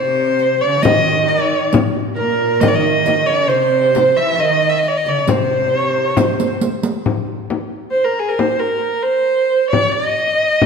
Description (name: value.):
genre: Arabic maqam ensemble.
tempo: 135 BPM (eighths).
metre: 10/8.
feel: straight.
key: C maqam saba.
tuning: A4 = 441 Hz.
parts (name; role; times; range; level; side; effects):
rich violin; melody; 0.0-10.7 s; Ab4 to E5; -15 LUFS; right 1 dB; slapback echo.
qanun; second line; 0.0-7.5 s; Bb4 to E5; -22 LUFS; right 7 dB; none.
rich symphonic cello section; second line; 0.0-6.6 s; Bb2 to E3; -22 LUFS; right 1 dB; none.
riq; percussion; 0.4-7.0 s; none; -24 LUFS; right 4 dB; none.
frame drum; percussion; 0.9-10.7 s; none; -19 LUFS; left 5 dB; none.
room: wet scoring stage reverb, RT60 2.0 s.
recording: none.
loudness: -14 LUFS.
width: side -5 dB against mid.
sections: 0.0-7.1 A section; 7.1-10.7 B section.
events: drum fill 6.2-7.1.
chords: none.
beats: 0.40 0.84 1.29 1.73 2.18 | 2.62 3.06 3.51 3.95 4.39 4.84 5.28 5.73 6.17 6.61 | 7.06 7.50 7.95 8.39 8.83 9.28 9.72 10.17 10.61.